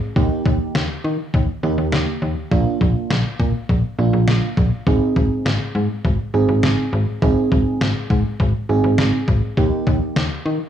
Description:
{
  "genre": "synth-pop",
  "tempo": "102 BPM",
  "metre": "4/4",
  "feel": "straight",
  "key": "Eb major",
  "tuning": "A4 = 440 Hz",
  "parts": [
    { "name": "mellow FM electric piano", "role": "accompaniment", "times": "0.2-10.2 s", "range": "Bb3 to Ab4", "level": "-22 LUFS", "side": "right 4 dB", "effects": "chorus, cassette tape" },
    { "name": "slap-like FM bass", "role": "bass", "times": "0.2-10.6 s", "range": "Ab1 to Eb3", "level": "-19 LUFS", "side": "left 1 dB", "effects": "none" },
    { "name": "detuned 8-bit digital drum machine", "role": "drums", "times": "0.2-10.3 s", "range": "kick drum, snare drum", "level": "-21 LUFS", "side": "left 1 dB", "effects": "overdrive, cassette tape" }
  ],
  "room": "light reverb, digital ambience",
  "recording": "home recording on cassette, studio ambience",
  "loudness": "-16 LUFS",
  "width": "side -10 dB against mid",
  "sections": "0.0-10.7 A section",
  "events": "none",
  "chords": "0.2 Eb; 2.5 Bb; 4.9 Ab; 9.6 Eb"
}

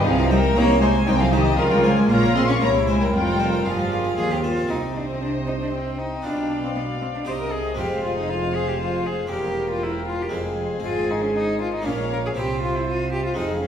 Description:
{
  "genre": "classical, baroque-style concerto movement with solo episodes",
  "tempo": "117 BPM",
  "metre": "3/4",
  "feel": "straight",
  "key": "F minor, C minor from 4.7 s",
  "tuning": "A4 = 443 Hz",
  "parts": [
    { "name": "dark studio violin section", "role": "melody", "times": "0.0-13.7 s", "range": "Eb5 to Db6", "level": "-31 LUFS", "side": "left 4 dB", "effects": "none" },
    { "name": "warm cello", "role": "melody", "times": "0.0-13.7 s", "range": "Eb3 to C5", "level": "-24 LUFS", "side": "left 1 dB", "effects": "none" },
    { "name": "rich chamber violin section", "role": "second line", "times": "0.0-13.7 s", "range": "G4 to F5", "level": "-28 LUFS", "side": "left 2 dB", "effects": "none" },
    { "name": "dark chamber cello section", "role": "bass", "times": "0.0-13.7 s", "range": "Eb2 to Db3", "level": "-29 LUFS", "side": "right 2 dB", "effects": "none" },
    { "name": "harpsichord", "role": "accompaniment", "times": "0.1-13.7 s", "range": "Eb2 to C5", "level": "-31 LUFS", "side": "equal", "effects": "none" },
    { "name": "warm chamber viola section", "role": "accompaniment", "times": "0.1-13.7 s", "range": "Eb4 to Eb5", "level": "-28 LUFS", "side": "right 1 dB", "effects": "none" },
    { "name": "rich chamber double bass section", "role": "bass", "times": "0.1-13.7 s", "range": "E1 to Eb2", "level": "-28 LUFS", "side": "right 2 dB", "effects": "none" }
  ],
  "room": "wet recital hall reverb, RT60 1.6 s",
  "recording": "heard from further back in the room",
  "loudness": "-19 LUFS",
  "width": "side -8 dB against mid",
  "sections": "0.0-4.7 A section; 4.7-13.7 B section",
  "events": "none",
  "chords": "0.1 Cm; 1.6 Bbm/Db; 2.6 C; 3.1 Fm; 4.7 Cm; 6.3 G7/B; 7.3 Cm; 7.8 Fm; 9.3 C7/E; 10.3 Fm; 10.8 Ab; 11.9 Bbm; 12.4 C"
}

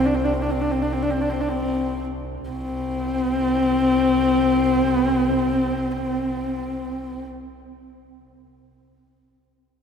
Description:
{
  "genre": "mongolian traditional, Mongolian folk",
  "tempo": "free time",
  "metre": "none",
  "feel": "none",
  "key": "unclear",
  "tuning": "A4 = 440 Hz",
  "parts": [
    { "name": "warm horsehead fiddle", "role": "melody", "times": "0.0-7.2 s", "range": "C4 to D4", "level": "-20 LUFS", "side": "left 2 dB", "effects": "none" },
    { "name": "rich double bass", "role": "drone", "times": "0.0-7.3 s", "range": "C2", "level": "-29 LUFS", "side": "right 2 dB", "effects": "none" }
  ],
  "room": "wet church reverb, RT60 3.7 s",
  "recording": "recorded in a church or concert hall",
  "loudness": "-20 LUFS",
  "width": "side -7 dB against mid",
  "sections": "0.0-2.5 A section; 2.5-6.5 B section",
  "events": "slowing down 0.0-2.5",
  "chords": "none"
}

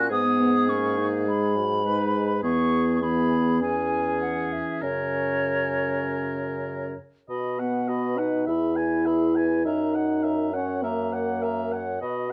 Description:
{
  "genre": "quick classical-period movement for wind quintet",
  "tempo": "102 BPM",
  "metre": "4/4",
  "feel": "straight",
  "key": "unclear",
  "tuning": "A4 = 440 Hz",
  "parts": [
    { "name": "silver concert flute", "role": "melody", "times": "0.0-12.3 s", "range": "C#5 to F#6", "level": "-32 LUFS", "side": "equal", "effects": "none" },
    { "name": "warm oboe", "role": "second line", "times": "0.0-12.3 s", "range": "G#4 to G#5", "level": "-35 LUFS", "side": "equal", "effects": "none" },
    { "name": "warm French horn", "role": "accompaniment", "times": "0.0-12.0 s", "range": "C#3 to E4", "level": "-30 LUFS", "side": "equal", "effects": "none" },
    { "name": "warm clarinet", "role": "accompaniment", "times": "0.0-12.3 s", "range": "B3 to C#5", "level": "-32 LUFS", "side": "equal", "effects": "none" },
    { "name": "warm bassoon", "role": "bass", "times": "0.0-12.3 s", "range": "E2 to B2", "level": "-31 LUFS", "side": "equal", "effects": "none" }
  ],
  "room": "moderate studio reverb, RT60 0.8 s",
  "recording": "dark, warm production",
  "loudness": "-25 LUFS",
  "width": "mono",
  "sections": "0.0-7.3 A section; 7.3-12.3 B section",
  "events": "none",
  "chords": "0.1 G#m; 2.4 E; 3.6 C#m/E; 4.8 F#; 7.3 B; 8.5 E; 9.7 F#7"
}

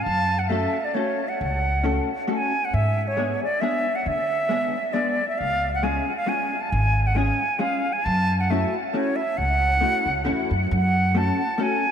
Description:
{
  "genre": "musette waltz",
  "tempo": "136 BPM",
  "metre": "3/4",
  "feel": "swing 54% on 8ths",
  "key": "F# minor",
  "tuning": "A4 = 441 Hz",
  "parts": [
    { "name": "bright concert flute", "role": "melody", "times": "0.0-11.9 s", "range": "C#5 to A5", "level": "-23 LUFS", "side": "right 1 dB", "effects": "ping-pong delay" },
    { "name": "upright bass", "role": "bass", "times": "0.0-11.3 s", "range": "G#1 to D3", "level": "-24 LUFS", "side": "equal", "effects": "none" },
    { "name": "vintage hollow-body jazz guitar", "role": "accompaniment", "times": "0.5-11.8 s", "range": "G#3 to A4", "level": "-28 LUFS", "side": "left 2 dB", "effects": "analog chorus" }
  ],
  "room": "moderate huge ambient reverb, RT60 7.8 s",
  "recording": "dreamy mix soaked in reverb, faint mains hum",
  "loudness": "-20 LUFS",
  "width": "side -8 dB against mid",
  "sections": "0.0-10.7 A section; 10.7-11.9 B section",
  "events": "none",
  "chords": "0.1 F#m; 2.7 G#dim; 5.4 C#; 8.1 F#m7; 10.7 F#m"
}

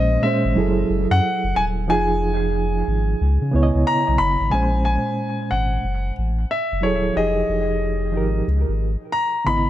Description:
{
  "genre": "R&B, neo-soul",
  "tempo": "91 BPM",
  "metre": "4/4",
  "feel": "swing 64% on 16ths",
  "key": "unclear",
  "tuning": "A4 = 440 Hz",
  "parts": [
    { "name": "clear grand piano", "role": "melody", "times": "0.0-9.7 s", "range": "Db5 to Cb6", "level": "-23 LUFS", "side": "left 2 dB", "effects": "tape echo" },
    { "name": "reed electric piano", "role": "accompaniment", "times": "0.0-9.7 s", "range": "Bb2 to Eb5", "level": "-22 LUFS", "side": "right 3 dB", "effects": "overdrive, fast tremolo, tape echo" },
    { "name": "warm sub bass", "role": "bass", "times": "0.0-9.7 s", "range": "Eb1 to Db3", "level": "-21 LUFS", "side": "equal", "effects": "none" }
  ],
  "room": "little or no reverb",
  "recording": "echo-heavy mix",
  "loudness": "-18 LUFS",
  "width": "side -13 dB against mid",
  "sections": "0.0-4.5 A section; 4.5-9.7 B section",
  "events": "none",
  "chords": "0.0 Bbm9; 0.6 Gbm9; 1.9 Fm7; 3.2 Dbm9; 4.5 Bbm9; 5.8 Gbm9; 7.2 Fm9; 8.5 Dbm9"
}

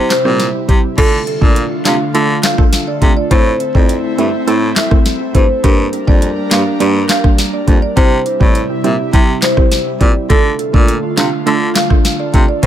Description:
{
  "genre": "dancehall",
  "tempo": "103 BPM",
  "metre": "4/4",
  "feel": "straight",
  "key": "D minor",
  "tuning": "A4 = 438 Hz",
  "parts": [
    { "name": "hollow square pluck", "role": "accompaniment", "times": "0.0-12.7 s", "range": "G3 to A4", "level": "-18 LUFS", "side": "right 5 dB", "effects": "chorus, tape echo" },
    { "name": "airy breathy pad", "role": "sustained chords", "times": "0.0-12.7 s", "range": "C3 to Bb4", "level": "-22 LUFS", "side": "left 2 dB", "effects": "chorus, sidechain pumping" },
    { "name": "raspy baritone saxophone", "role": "bass", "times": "0.0-12.7 s", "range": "F2 to D3", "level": "-17 LUFS", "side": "left 1 dB", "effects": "none" },
    { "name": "marimba with medium mallets", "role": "melody", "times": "0.1-12.7 s", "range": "A4 to F5", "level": "-19 LUFS", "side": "equal", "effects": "tape echo" },
    { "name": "afro-pop drum kit", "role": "drums", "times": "0.1-12.7 s", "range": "crash cymbal, handclaps, hi-hat, kick drum, rim click, snare drum", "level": "-12 LUFS", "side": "left 1 dB", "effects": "none" }
  ],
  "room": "light reverb",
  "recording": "echo-heavy mix",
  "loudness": "-10 LUFS",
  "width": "side -11 dB against mid",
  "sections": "1.0-12.7 A section",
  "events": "none",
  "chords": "0.0 C; 1.0 Dm; 3.3 Am; 5.6 Gm; 8.0 C; 10.3 Dm"
}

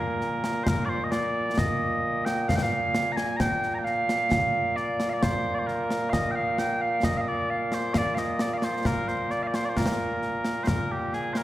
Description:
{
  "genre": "scottish traditional, Scottish pipe music",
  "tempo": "66 BPM",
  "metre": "3/4",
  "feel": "straight",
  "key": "Bb major",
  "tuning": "A4 = 440 Hz",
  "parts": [
    { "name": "mellow small bagpipes", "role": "melody", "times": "0.0-11.4 s", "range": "Bb2 to Bb5", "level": "-26 LUFS", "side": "right 1 dB", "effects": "none" },
    { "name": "concert snare drum and concert bass drum", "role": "drums", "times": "0.2-11.4 s", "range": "none", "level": "-29 LUFS", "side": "left 1 dB", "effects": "none" }
  ],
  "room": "moderate concert hall reverb, RT60 2.3 s",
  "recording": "heard from further back in the room",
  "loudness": "-24 LUFS",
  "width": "side -14 dB against mid",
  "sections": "0.0-11.4 A section",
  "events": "none",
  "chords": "none"
}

